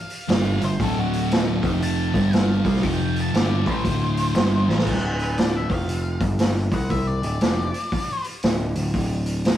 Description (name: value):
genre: blues rock power trio and southern rock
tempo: 118 BPM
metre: 4/4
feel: swing 63% on 8ths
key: unclear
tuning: A4 = 441 Hz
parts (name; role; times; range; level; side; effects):
- octave-fuzz lead guitar; melody; 0.0-8.2 s; F#4 to A5; -31 LUFS; left 2 dB; distortion, analog delay
- vintage drum kit; drums; 0.1-9.6 s; crash cymbal, hi-hat, kick drum, snare drum; -23 LUFS; equal; none
- thick fuzz guitar; riff; 0.3-4.9 s; D2 to C4; -23 LUFS; right 1 dB; distortion
- overdriven picked electric bass; bass; 0.3-9.6 s; D1 to C2; -24 LUFS; equal; none
room: moderate stone room reverb, RT60 1.0 s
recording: rough rehearsal-room recording, warm saturation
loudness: -19 LUFS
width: side -11 dB against mid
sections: 0.0-4.9 A section; 4.9-9.6 B section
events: drum fill 4.6; lead electric guitar solo 4.9-9.6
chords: 0.0 G5; 0.8 D; 1.6 F5; 2.1 G5; 2.6 Csus4; 2.8 F5; 3.3 D5; 4.9 N.C.; 6.7 C; 7.2 Dm